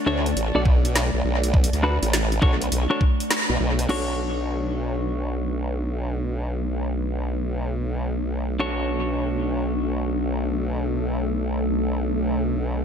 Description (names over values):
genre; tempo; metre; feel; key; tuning
glitch hop; 102 BPM; 4/4; swing 64% on 16ths; B minor; A4 = 438 Hz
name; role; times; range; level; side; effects
warbly tape-like pad; sustained chords; 0.0-12.8 s; A3 to D5; -28 LUFS; equal; chorus, built-in reverb, sidechain pumping
clean electric guitar; stabs; 0.1-12.8 s; D4 to D5; -28 LUFS; left 1 dB; sidechain pumping, dub echo
formant-sweep wobble bass; bass; 0.1-12.8 s; A1 to D2; -25 LUFS; equal; chorus
drum and bass drum kit; drums; 0.3-4.0 s; crash cymbal, hi-hat, rim click, snare drum; -27 LUFS; equal; overdrive, studio reverb, dub echo
electronic kick drum; drums; 0.7-3.2 s; none; -19 LUFS; equal; overdrive, studio reverb
room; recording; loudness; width
light reverb, digital ambience; echo-heavy mix; -21 LUFS; side -7 dB against mid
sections
0.0-3.9 A section; 3.9-12.8 B section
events
kick drops out 3.3-3.9; band accent 3.3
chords
0.0 Bm7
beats
0.36 0.95 | 1.54 2.12 2.71 3.30 | 3.89 4.48 5.07 5.65 | 6.24 6.83 7.42 8.01 | 8.60 9.18 9.77 10.36 | 10.95 11.54 12.12 12.71